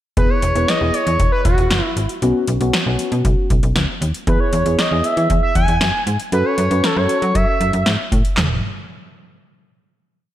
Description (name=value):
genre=synth-pop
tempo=117 BPM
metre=4/4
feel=straight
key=E major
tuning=A4 = 441 Hz
part: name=expressive synth lead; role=melody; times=0.2-7.9 s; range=F#4 to G#5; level=-20 LUFS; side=equal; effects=chorus, slapback echo
part: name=muted felt-like synth keys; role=accompaniment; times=0.2-7.6 s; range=B3 to B4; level=-22 LUFS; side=left 1 dB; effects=chorus, phaser, slapback echo
part: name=slap-like FM bass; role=bass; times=0.2-8.6 s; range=E1 to F#3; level=-19 LUFS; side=equal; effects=none
part: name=electro analog drum machine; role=drums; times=0.2-8.5 s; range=handclaps, hi-hat, kick drum, snare drum, toms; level=-19 LUFS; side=equal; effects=none
room=moderate lush hall reverb, RT60 1.7 s, digital ambience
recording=big arena sound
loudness=-15 LUFS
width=side -13 dB against mid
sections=0.2-8.4 verse; 8.4-10.3 final note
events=none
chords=0.2 Eadd9; 2.2 Bsus2; 4.3 E; 6.3 F#m7; 8.4 N.C.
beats=| 0.17 0.68 1.20 1.71 | 2.22 2.73 3.25 3.76 | 4.27 4.79 5.30 5.81 | 6.32 6.84 7.35 7.86 | 8.38